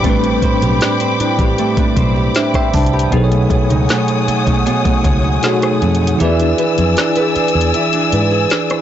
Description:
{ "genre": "contemporary R&B", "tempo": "78 BPM", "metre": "4/4", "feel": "straight", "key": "unclear", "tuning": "A4 = 440 Hz", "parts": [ { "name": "bell-like tine electric piano", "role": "accompaniment", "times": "0.0-8.8 s", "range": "A2 to B5", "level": "-18 LUFS", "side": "left 1 dB", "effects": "fast stereo tremolo" }, { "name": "dark studio string section", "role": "sustained chords", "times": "0.0-8.8 s", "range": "C4 to E6", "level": "-20 LUFS", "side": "left 2 dB", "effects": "none" }, { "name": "nylon-string guitar", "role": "arpeggios", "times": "0.0-8.8 s", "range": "B2 to C5", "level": "-19 LUFS", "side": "right 6 dB", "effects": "digital delay" }, { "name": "vintage muted fingered electric bass", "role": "bass", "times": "0.0-8.4 s", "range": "A1 to G#2", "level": "-17 LUFS", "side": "equal", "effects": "none" }, { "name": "smooth R&B drum kit", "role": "drums", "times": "0.0-8.8 s", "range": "hi-hat, kick drum, rim click, snare drum", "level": "-18 LUFS", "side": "equal", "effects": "none" }, { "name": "synth chime", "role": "texture", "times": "0.0-8.8 s", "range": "E4 to A5", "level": "-27 LUFS", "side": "left 3 dB", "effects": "none" } ], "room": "light reverb", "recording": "blown-out, overdriven recording, overdrive, nothing above 7.8 kHz", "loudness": "-12 LUFS", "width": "side -10 dB against mid", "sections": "0.0-8.8 A section", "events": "kick muted 6.2-8.8", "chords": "0.0 Am11; 3.1 B13; 6.2 E7" }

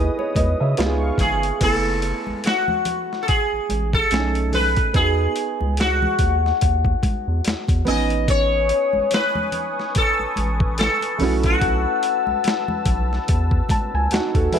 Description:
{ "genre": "R&B, neo-soul", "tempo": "72 BPM", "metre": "4/4", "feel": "swing 57% on 16ths", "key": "F# dorian", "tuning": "A4 = 440 Hz", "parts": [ { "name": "warm grand piano", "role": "accompaniment", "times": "0.0-14.6 s", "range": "A3 to A5", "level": "-26 LUFS", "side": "right 4 dB", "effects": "none" }, { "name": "warm analog pad", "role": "sustained chords", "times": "0.0-1.6, 8.3-14.6 s", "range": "B4 to E6", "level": "-31 LUFS", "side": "left 1 dB", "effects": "chorus" }, { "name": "round analog bass", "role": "bass", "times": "0.0-14.5 s", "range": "F#1 to C#3", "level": "-22 LUFS", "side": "equal", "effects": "none" }, { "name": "congas", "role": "percussion", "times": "0.2-14.6 s", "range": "none", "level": "-31 LUFS", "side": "left 1 dB", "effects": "none" }, { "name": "boom bap sampler-style drum kit", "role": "drums", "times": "0.4-14.6 s", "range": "crash cymbal, hi-hat, kick drum, snare drum", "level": "-23 LUFS", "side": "equal", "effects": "none" }, { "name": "sitar", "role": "melody", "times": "1.2-13.9 s", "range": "F#4 to D#5", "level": "-21 LUFS", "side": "left 2 dB", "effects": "slapback echo" } ], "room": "little or no reverb", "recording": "none", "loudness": "-18 LUFS", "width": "side -8 dB against mid", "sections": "0.0-1.6 A section; 1.6-14.6 B section", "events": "grand piano fill 0.4-1.6, 13.3-14.6", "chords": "0.0 C#m9; 0.8 C#7; 1.6 F#m11; 4.1 B13; 4.9 Emaj9; 7.9 Amaj9#11; 11.2 B7sus4" }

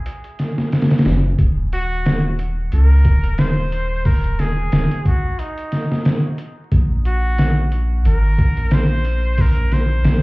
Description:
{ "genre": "trip hop", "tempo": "90 BPM", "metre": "4/4", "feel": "swing 56% on 16ths", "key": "unclear", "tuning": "A4 = 439 Hz", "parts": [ { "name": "trip hop sampler-style drum kit", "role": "drums", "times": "0.1-10.2 s", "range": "hi-hat, kick drum, snare drum", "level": "-17 LUFS", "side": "equal", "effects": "studio ambience" }, { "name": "round analog bass", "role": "bass", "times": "1.1-10.2 s", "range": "Eb1 to Db2", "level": "-17 LUFS", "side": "equal", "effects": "none" }, { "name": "trumpet with straight mute", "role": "melody", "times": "1.7-10.2 s", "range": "Eb4 to C5", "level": "-27 LUFS", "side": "equal", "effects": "dub echo" } ], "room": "digital ambience", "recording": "heard muffled through a wall, club reverb, vinyl crackle, EQ", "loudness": "-15 LUFS", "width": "side -23 dB against mid", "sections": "0.0-10.2 A section", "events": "none", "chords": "0.0 N.C.; 6.7 Bb5" }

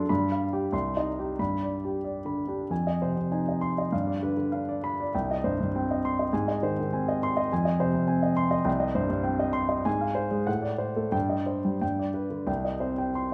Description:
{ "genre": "classical, romantic character piece for solo piano", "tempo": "86-106 BPM", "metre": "2/4", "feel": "rubato", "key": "C minor", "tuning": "A4 = 437 Hz", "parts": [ { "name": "warm grand piano", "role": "solo", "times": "0.0-13.3 s", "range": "C2 to C6", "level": "-28 LUFS", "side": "equal", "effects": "none" } ], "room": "wet recital hall reverb, RT60 1.3 s", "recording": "none", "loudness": "-28 LUFS", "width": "mono", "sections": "0.0-2.7 A section; 2.7-12.5 B section", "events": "none", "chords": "0.1 G7; 0.7 Cm; 1.4 G; 2.7 Fm7; 3.9 G7; 5.1 Cm; 6.3 Ab; 7.5 Fm7; 8.7 Cm; 9.9 Fm/Ab; 10.5 D7/A; 11.1 Cm/G; 11.8 G; 12.5 Cm" }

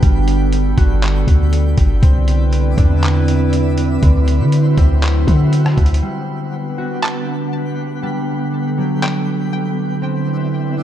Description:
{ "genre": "hip hop, atmospheric cloud-rap", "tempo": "120 BPM", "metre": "4/4", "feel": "half-time", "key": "unclear", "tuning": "A4 = 440 Hz", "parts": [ { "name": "warbly tape-like pad", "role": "sustained chords", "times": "0.0-10.8 s", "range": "D3 to B4", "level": "-19 LUFS", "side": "right 2 dB", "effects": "chorus, built-in reverb, sidechain pumping" }, { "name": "concert harp", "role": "arpeggios", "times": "0.0-10.8 s", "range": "D3 to F#4", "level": "-25 LUFS", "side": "equal", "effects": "ping-pong delay" }, { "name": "warm 808-style bass", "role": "bass", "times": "0.0-6.0 s", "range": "G1 to D3", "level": "-14 LUFS", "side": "equal", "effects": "none" }, { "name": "trip hop sampler-style drum kit", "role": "drums", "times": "0.0-9.1 s", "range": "handclaps, hi-hat, kick drum, rim click", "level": "-16 LUFS", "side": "equal", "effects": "none" }, { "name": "twinkling granular texture", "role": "texture", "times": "0.0-10.8 s", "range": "G3 to G6", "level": "-29 LUFS", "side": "equal", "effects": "built-in reverb" }, { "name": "string-like resonator pluck", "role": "melody", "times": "7.0-9.5 s", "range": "G5 to A5", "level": "-27 LUFS", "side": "equal", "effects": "chorus, ping-pong delay" } ], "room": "little or no reverb", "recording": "dark, warm production", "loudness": "-13 LUFS", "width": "side -11 dB against mid", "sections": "0.0-6.0 A section; 6.0-10.8 B section", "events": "none", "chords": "0.0 Gmaj7; 2.0 Cmaj9; 4.0 D13; 6.0 Gmaj7; 10.0 Cmaj9" }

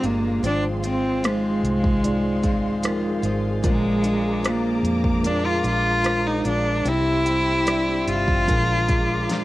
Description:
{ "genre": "pop ballad", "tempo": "75 BPM", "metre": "4/4", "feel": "straight", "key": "F dorian", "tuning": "A4 = 440 Hz", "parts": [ { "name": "rich cello", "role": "melody", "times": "0.0-9.4 s", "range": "Ab3 to F4", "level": "-22 LUFS", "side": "equal", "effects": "cassette tape" }, { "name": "mellow tine electric piano", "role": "accompaniment", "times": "0.0-9.4 s", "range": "Ab2 to E5", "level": "-27 LUFS", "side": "right 1 dB", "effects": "fast stereo tremolo, cassette tape" }, { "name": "muted studio string section", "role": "sustained chords", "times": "0.0-9.4 s", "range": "Ab3 to E6", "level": "-33 LUFS", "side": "left 1 dB", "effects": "cassette tape" }, { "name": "picked steel-string acoustic guitar", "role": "arpeggios", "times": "0.0-9.4 s", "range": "Ab2 to G4", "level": "-32 LUFS", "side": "left 4 dB", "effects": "cassette tape" }, { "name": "vintage muted fingered electric bass", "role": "bass", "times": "0.0-9.3 s", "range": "G1 to F2", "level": "-28 LUFS", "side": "equal", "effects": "none" }, { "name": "deep house drum kit", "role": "drums", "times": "0.0-9.4 s", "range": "hi-hat, kick drum, rim click, snare drum", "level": "-25 LUFS", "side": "equal", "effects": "cassette tape" } ], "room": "little or no reverb", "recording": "home recording on cassette", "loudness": "-19 LUFS", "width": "side -17 dB against mid", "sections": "0.0-9.4 A section", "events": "none", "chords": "0.4 Fm7/Ab; 3.6 Bb7; 6.9 C; 8.5 Bb7" }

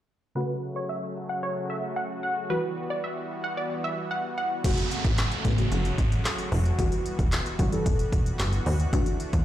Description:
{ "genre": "dance-pop", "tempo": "112 BPM", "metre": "4/4", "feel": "straight", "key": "unclear", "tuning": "A4 = 437 Hz", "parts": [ { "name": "wide unison pluck", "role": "melody", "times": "0.4-4.5 s", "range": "B4 to F#5", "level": "-31 LUFS", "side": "right 1 dB", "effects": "low-pass filter, ping-pong delay" }, { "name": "deep mellow chord stab", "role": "accompaniment", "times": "0.4-9.4 s", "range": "C#3 to A4", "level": "-32 LUFS", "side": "left 1 dB", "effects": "chorus, sidechain pumping, low-pass filter" }, { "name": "soft supersaw", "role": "sustained chords", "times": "0.4-9.4 s", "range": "C#3 to F#4", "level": "-34 LUFS", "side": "equal", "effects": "sidechain pumping, low-pass filter" }, { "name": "plucky analog bass", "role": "bass", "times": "4.6-9.4 s", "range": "E1 to E2", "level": "-26 LUFS", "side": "equal", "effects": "sidechain pumping" }, { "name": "deep house drum kit", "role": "drums", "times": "4.6-9.4 s", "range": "crash cymbal, handclaps, hi-hat, kick drum, snare drum", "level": "-27 LUFS", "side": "equal", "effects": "none" }, { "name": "downlifter", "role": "sound effects", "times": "4.6-8.9 s", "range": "none", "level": "-35 LUFS", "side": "right 2 dB", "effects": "none" } ], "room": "light reverb", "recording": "played on a big sound system in a bare room, stone room reverb", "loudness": "-25 LUFS", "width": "side -12 dB against mid", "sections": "0.4-4.6 A section; 4.6-9.4 B section", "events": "filter sweep 0.4-4.6", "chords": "0.4 F#m; 2.5 Emadd9; 4.6 F#m; 6.8 Emadd9; 8.9 Dadd9" }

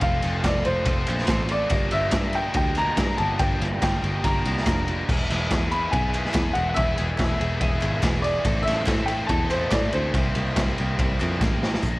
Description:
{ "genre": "indie rock", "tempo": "142 BPM", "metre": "4/4", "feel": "straight", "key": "C mixolydian", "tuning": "A4 = 440 Hz", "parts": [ { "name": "clear upright piano", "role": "melody", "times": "0.0-11.6 s", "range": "C5 to B5", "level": "-27 LUFS", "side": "equal", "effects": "cassette tape, tape echo" }, { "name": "bright tonewheel organ", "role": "sustained chords", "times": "0.0-11.8 s", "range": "F4 to C6", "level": "-38 LUFS", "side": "equal", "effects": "none" }, { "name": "overdriven semi-hollow guitar", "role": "riff", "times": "0.0-12.0 s", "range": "E2 to Bb4", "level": "-32 LUFS", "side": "right 3 dB", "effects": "lush chorus, cassette tape, tape echo" }, { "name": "scooped high-gain guitar", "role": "riff", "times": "0.0-12.0 s", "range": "F3 to Bb4", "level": "-31 LUFS", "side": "left 4 dB", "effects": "distortion, cassette tape" }, { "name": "picked electric bass", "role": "bass", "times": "0.0-12.0 s", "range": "E1 to A2", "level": "-27 LUFS", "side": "equal", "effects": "none" }, { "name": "raw garage drum kit", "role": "drums", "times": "0.0-11.9 s", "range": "crash cymbal, hi-hat, kick drum, ride cymbal, snare drum", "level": "-25 LUFS", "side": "equal", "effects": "none" }, { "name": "group handclap", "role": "percussion", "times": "0.5-11.5 s", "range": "none", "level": "-37 LUFS", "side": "right 2 dB", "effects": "none" } ], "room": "little or no reverb", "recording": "home recording on cassette", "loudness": "-21 LUFS", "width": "side -21 dB against mid", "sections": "0.0-11.8 A section", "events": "drum fill 11.4-11.8", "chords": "0.0 F; 1.7 Gm7; 5.1 E; 8.5 Am7; 10.2 C7sus4" }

